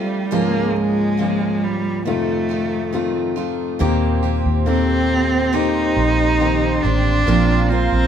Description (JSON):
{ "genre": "pop", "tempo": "69 BPM", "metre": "4/4", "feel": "straight", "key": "unclear", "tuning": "A4 = 440 Hz", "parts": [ { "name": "warm cello", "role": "melody", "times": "0.0-8.1 s", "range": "G3 to Eb4", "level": "-20 LUFS", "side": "right 1 dB", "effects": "none" }, { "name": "dark baby grand piano", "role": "accompaniment", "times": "0.0-8.1 s", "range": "Db2 to Bb4", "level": "-22 LUFS", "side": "left 4 dB", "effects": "none" }, { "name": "picked steel-string acoustic guitar", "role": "arpeggios", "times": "0.0-8.1 s", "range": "Bb2 to Ab4", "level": "-25 LUFS", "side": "right 6 dB", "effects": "none" }, { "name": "warm analog pad", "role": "sustained chords", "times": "3.8-8.1 s", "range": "G4 to C6", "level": "-26 LUFS", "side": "right 2 dB", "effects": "chorus" }, { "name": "vintage muted fingered electric bass", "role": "bass", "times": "3.8-8.1 s", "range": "A1 to Eb2", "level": "-19 LUFS", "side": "right 1 dB", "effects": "none" } ], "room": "moderate large studio reverb, RT60 1.2 s", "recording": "band playing live in one room", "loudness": "-16 LUFS", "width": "side -8 dB against mid", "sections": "0.0-3.8 A section; 3.8-8.1 B section", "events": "none", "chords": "0.3 Db6; 2.1 F7; 3.8 Eb6; 7.3 Bbsus2" }